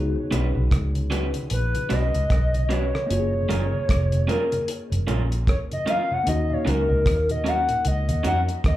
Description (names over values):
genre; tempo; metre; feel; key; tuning
lovers rock reggae; 76 BPM; 4/4; swing 59% on 16ths; F# major; A4 = 440 Hz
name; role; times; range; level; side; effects
mellow tine electric piano; accompaniment; 0.0-8.8 s; A#3 to G#4; -32 LUFS; left 3 dB; medium stereo tremolo
vintage muted fingered electric bass; bass; 0.0-8.8 s; E#1 to E#2; -23 LUFS; equal; none
mellow tonewheel organ; accompaniment; 0.2-8.4 s; D#2 to E#4; -33 LUFS; equal; chorus vibrato, slapback echo
electric guitar through a small old amp; stabs; 0.3-8.4 s; C#4 to B4; -29 LUFS; right 3 dB; spring reverb, slapback echo
damped 70s drum kit; drums; 0.3-8.8 s; hi-hat, kick drum, rim click; -25 LUFS; equal; none
hollow clarinet-like synth lead; melody; 1.5-8.8 s; A#4 to F#5; -26 LUFS; left 1 dB; chorus, tape echo, slapback echo
room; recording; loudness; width
light reverb; live gig heard through the venue's PA, club reverb; -20 LUFS; side -14 dB against mid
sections
0.0-8.8 A section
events
soft synth lead solo 0.0-8.8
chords
0.0 C#7sus4; 3.1 F#maj7; 6.3 D#m7